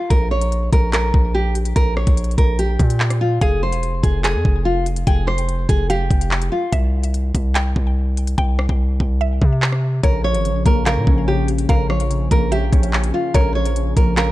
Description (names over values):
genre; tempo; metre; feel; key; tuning
hip hop, drill; 145 BPM; 4/4; half-time; unclear; A4 = 440 Hz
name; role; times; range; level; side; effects
nylon-string guitar; melody; 0.0-6.7, 10.0-14.3 s; F4 to Db5; -22 LUFS; right 1 dB; low-pass filter, ping-pong delay
distorted 808-style bass; bass; 0.1-14.3 s; E1 to C3; -19 LUFS; equal; distortion
drill drum kit; drums; 0.1-14.3 s; handclaps, hi-hat, kick drum, rim click; -18 LUFS; equal; vintage 12-bit sampler grit
mallet-like synth pluck; second line; 3.4-14.3 s; Db5 to Ab5; -29 LUFS; equal; chorus, ping-pong delay
glassy digital keys; accompaniment; 10.0-14.3 s; Db3 to Db4; -23 LUFS; left 3 dB; chorus, low-pass filter
room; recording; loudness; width
digital ambience; dark, warm production; -15 LUFS; side -16 dB against mid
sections
0.0-14.3 A section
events
hi-hats muted 8.4-10.0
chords
0.0 Bbm; 3.4 Fm; 6.7 C; 10.0 Bbm